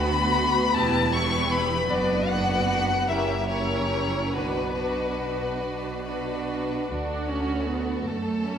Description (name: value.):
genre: classical, slow romantic movement for string orchestra.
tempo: 46-52 BPM (dotted quarters).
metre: 6/8.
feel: rubato.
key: B minor.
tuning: A4 = 445 Hz.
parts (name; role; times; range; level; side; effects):
rich chamber violin section; melody; 0.0-8.6 s; A4 to C#6; -27 LUFS; left 4 dB; none.
clear chamber violin section; second line; 0.0-8.6 s; F#4 to B4; -30 LUFS; left 2 dB; none.
warm symphonic viola section; accompaniment; 0.0-8.6 s; A3 to F#4; -30 LUFS; right 3 dB; none.
rich chamber double bass section; bass; 0.0-7.6 s; E1 to D2; -32 LUFS; right 2 dB; none.
warm chamber cello section; bass; 0.0-8.6 s; D2 to B2; -31 LUFS; right 2 dB; none.
room: wet scoring stage reverb, RT60 1.9 s.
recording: none.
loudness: -23 LUFS.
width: side -8 dB against mid.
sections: 0.0-6.9 A section; 6.9-8.6 B section.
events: none.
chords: 0.0 Bm/D; 0.7 Em; 1.9 Bm/F#; 3.1 F#7b9; 4.3 Bm; 6.9 D.